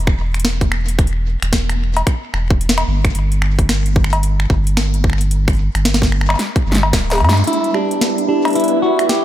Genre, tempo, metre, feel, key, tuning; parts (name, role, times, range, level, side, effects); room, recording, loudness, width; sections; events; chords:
IDM; 111 BPM; 4/4; swing 62% on 16ths; A4 = 440 Hz
warm sub bass; bass; 0.0-7.4 s; D1 to G2; -16 LUFS; equal; tube saturation
electro analog drum machine; drums; 0.1-9.2 s; cowbell, finger snaps, hi-hat, snare drum; -19 LUFS; left 1 dB; overdrive, ping-pong delay
electronic kick drum; drums; 0.1-7.1 s; -16 LUFS; equal
semi-hollow electric guitar; melody; 7.5-9.2 s; D4 to G4; -17 LUFS; left 1 dB; tape echo, shimmer reverb
phased analog pad; sustained chords; 7.7-9.2 s; G3 to B4; -18 LUFS; right 1 dB; phaser, chorus, shimmer reverb
kalimba; arpeggios; 7.5-9.1 s; D4 to E5; -21 LUFS; right 1 dB; low-pass filter, ping-pong delay, shimmer reverb
light reverb; -14 LUFS; side -12 dB against mid
0.0-7.5 A section; 7.5-9.2 B section
drum fill 6.4-7.5; band accent 7.3; filter sweep on kalimba 7.5-9.2
0.0 N.C.; 3.1 G5; 7.5 Em7